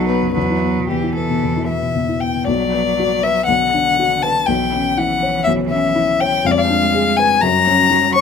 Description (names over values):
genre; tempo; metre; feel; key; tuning
quick classical-period movement for piano trio; 110-124 BPM; 4/4; rubato; B minor; A4 = 439 Hz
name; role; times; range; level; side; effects
clear violin; melody; 0.0-8.2 s; G4 to C#6; -16 LUFS; left 6 dB; none
rich cello; second line; 0.0-8.2 s; D3 to Ab3; -23 LUFS; right 7 dB; none
dark baby grand piano; accompaniment; 0.0-8.2 s; B1 to C#5; -19 LUFS; left 3 dB; none
room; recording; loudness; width
light reverb; close, detailed microphones; -14 LUFS; side -6 dB against mid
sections
0.0-2.5 A section; 2.5-8.2 B section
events
none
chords
0.4 Em; 2.5 Bm; 4.5 C#dim/B; 6.4 Fdim7; 7.4 F#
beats
| 0.36 0.90 1.43 1.96 | 2.48 2.98 3.48 3.98 | 4.47 4.96 5.46 5.95 | 6.44 6.94 7.42 7.91